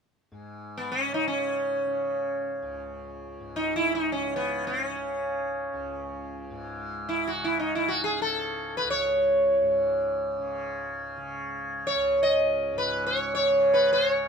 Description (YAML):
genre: indian classical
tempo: free time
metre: none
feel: none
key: unclear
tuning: A4 = 442 Hz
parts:
  - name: tanpura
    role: drone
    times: 0.3-14.3 s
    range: C#2 to C#3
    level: -36 LUFS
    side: equal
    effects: none
  - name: sitar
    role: melody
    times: 0.8-14.3 s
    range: B3 to D#5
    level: -24 LUFS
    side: equal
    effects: none
room: light reverb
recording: minimal, uncompressed stereo recording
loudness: -24 LUFS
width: side -6 dB against mid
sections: 0.3-14.3 A section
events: none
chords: none